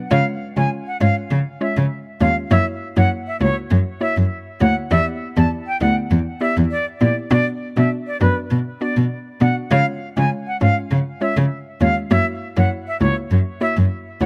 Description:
dancehall; 100 BPM; 4/4; straight; A4 = 440 Hz
hollow square pluck; accompaniment; 0.0-14.3 s; G#3 to D5; -26 LUFS; equal; chorus
bright reedy jazz flute; melody; 0.1-14.3 s; B4 to A5; -26 LUFS; equal; delay
dark cello; bass; 0.1-14.3 s; C#2 to C#3; -20 LUFS; equal
small room ambience; -19 LUFS; mono
0.0-14.3 A section
0.1 C#; 2.5 F#7; 4.9 Em7; 7.3 Bm; 9.7 C#; 12.1 F#7
| 0.11 0.71 1.31 1.91 | 2.51 3.11 3.71 4.31 | 4.91 5.51 6.11 6.71 | 7.31 7.91 8.51 9.11 | 9.71 10.31 10.91 11.51 | 12.11 12.71 13.31 13.91

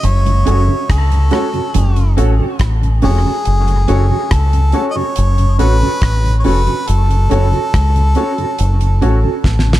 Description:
dub reggae; 70 BPM; 4/4; straight; F# minor; A4 = 437 Hz
clear harmonica; melody; 0.0-9.4 s; G#4 to D#5; -21 LUFS; left 1 dB; dub echo
deep dub fingered electric bass; bass; 0.0-9.8 s; E#1 to C#2; -12 LUFS; equal
damped 70s drum kit; drums; 0.0-9.8 s; hi-hat, kick drum, rim click, snare drum; -19 LUFS; equal
congas; percussion; 0.0-3.2 s; -25 LUFS; right 6 dB; dub echo
mellow tonewheel organ; accompaniment; 0.3-9.7 s; F#2 to F#4; -25 LUFS; left 2 dB; slow rotary speaker
mellow electric guitar; accompaniment; 0.5-9.3 s; C#4 to A4; -23 LUFS; right 8 dB; ensemble chorus, dub echo
warm grand piano; stabs; 0.5-9.2 s; C#4 to C#5; -23 LUFS; left 3 dB; dub echo
small room ambience; -11 LUFS; side -15 dB against mid
0.0-9.8 A section
part muted 3.5-9.8; drum fill 9.4-9.8
0.0 F#m
| 0.03 0.89 1.74 2.60 | 3.46 4.31 5.17 6.02 | 6.88 7.73 8.59 9.44

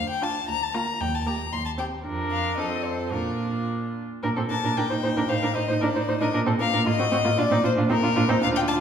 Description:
quick classical-period movement for string quartet; 114 BPM; 2/4; straight; Bb major; A4 = 440 Hz
rich violin; melody; 0.0-8.8 s; Bb4 to C6; -27 LUFS; left 5 dB
rich cello; bass; 0.0-8.8 s; D2 to Bb2; -27 LUFS; right 3 dB
dark violin; second line; 0.2-8.8 s; Eb4 to C5; -30 LUFS; left 1 dB
warm viola; accompaniment; 0.2-8.8 s; Bb3 to Eb4; -28 LUFS; right 2 dB
wet recital hall reverb, RT60 1.6 s; heard from further back in the room; -22 LUFS; side -8 dB against mid
0.0-4.2 A section; 4.2-8.8 B section
0.5 Bb/D; 1.0 Eb; 1.5 Cm/Eb; 2.1 Bb/F; 2.6 F7; 3.1 Bb; 4.8 Cm7/Bb; 5.3 Cm69/A; 6.3 Bb; 6.9 Adim7; 7.4 Bb
0.48 | 1.01 1.53 | 2.05 2.58 | 3.13 3.69 | 4.24 4.77 | 5.30 5.82 | 6.34 6.87 | 7.38 7.90 | 8.43

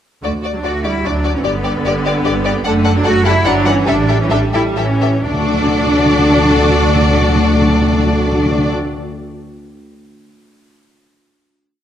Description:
quick classical-period movement for symphony orchestra; 118-151 BPM; 3/4; rubato; D major; A4 = 440 Hz
rich studio violin section; melody; 0.2-8.7 s; D5 to F#5; -22 LUFS; left 3 dB
warm symphonic violin section; second line; 0.2-8.7 s; F#4 to D5; -20 LUFS; left 2 dB
warm studio viola section; accompaniment; 0.2-8.7 s; D3 to D4; -20 LUFS; equal
dark studio double bass section; bass; 0.2-8.7 s; F#1 to D2; -18 LUFS; right 2 dB
rich studio cello section; bass; 0.2-8.7 s; A3 to F#4; -18 LUFS; right 1 dB
timpani; percussion; 3.9-8.7 s; A2 to D3; -18 LUFS; left 1 dB
moderate scoring stage reverb, RT60 1.6 s; -12 LUFS; side -10 dB against mid
0.2-5.3 A section; 5.3-8.2 final chord
slowing down 2.0-5.3
0.2 D; 1.4 G; 2.6 D/F#; 3.5 Gmaj7(no3); 3.9 A7sus4; 4.8 A7; 5.3 D
| 0.24 0.65 1.05 | 1.45 1.85 2.25 | 2.65 3.05 3.46 | 3.87 4.30 4.77 | 5.26 5.75 6.24 | 6.71 7.19 7.67

